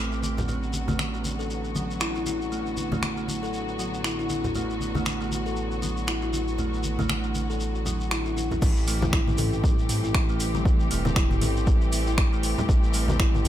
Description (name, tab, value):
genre	afro house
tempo	118 BPM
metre	4/4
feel	swing 58% on 16ths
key	A dorian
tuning	A4 = 440 Hz
part	rich studio string section	sustained chords	0.0-13.5 s	D3 to G4	-33 LUFS	left 1 dB	sidechain pumping
part	kalimba	arpeggios	0.0-13.5 s	F#3 to A4	-30 LUFS	equal	sidechain pumping, tape echo
part	smooth synth bass	bass	0.0-13.5 s	E1 to A1	-30 LUFS	equal	sidechain pumping
part	shekere	percussion	0.1-13.5 s	none	-39 LUFS	left 1 dB	none
part	congas	percussion	0.2-13.5 s	none	-31 LUFS	left 1 dB	none
part	afro-pop drum kit	drums	1.0-13.5 s	crash cymbal, finger snaps, hi-hat, toms	-30 LUFS	right 1 dB	overdrive, small room ambience
part	electronic kick drum	drums	8.6-13.3 s	none	-23 LUFS	equal	small room ambience
room	light reverb, studio reverb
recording	none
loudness	-23 LUFS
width	side -12 dB against mid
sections	0.0-8.6 A section; 8.6-13.5 B section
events	drop 8.6-13.5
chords	0.5 Bm/A; 8.6 Am7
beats	| 0.48 0.99 1.50 2.01 | 2.52 3.03 3.54 4.04 | 4.55 5.06 5.57 6.08 | 6.59 7.10 7.60 8.11 | 8.62 9.13 9.64 10.15 | 10.65 11.16 11.67 12.18 | 12.69 13.20